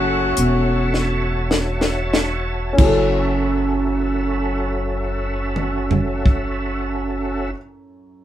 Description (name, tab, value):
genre	slow gospel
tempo	29-39 BPM (dotted quarters)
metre	6/8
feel	straight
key	F# minor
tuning	A4 = 440 Hz
part	warm horn section	melody	0.0-1.5 s	A3 to F#4	-21 LUFS	left 3 dB	none
part	dark upright piano	accompaniment	0.0-8.2 s	F#2 to A4	-25 LUFS	equal	none
part	overdriven tonewheel organ	sustained chords	0.0-7.5 s	C#4 to A5	-24 LUFS	right 2 dB	fast rotary speaker, chorus vibrato
part	upright bass	bass	0.0-7.5 s	E1 to F#1	-23 LUFS	equal	none
part	tight funk drum kit	drums	0.4-6.6 s	crash cymbal, hi-hat, kick drum, snare drum, toms	-19 LUFS	equal	none
room	moderate small room reverb, RT60 0.5 s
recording	band playing live in one room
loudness	-18 LUFS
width	side -12 dB against mid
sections	0.0-2.8 A section; 2.8-7.0 B section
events	slowing down 0.0-2.8; drum fill 0.9-2.8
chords	0.0 F#m7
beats	0.92 | 2.79 4.88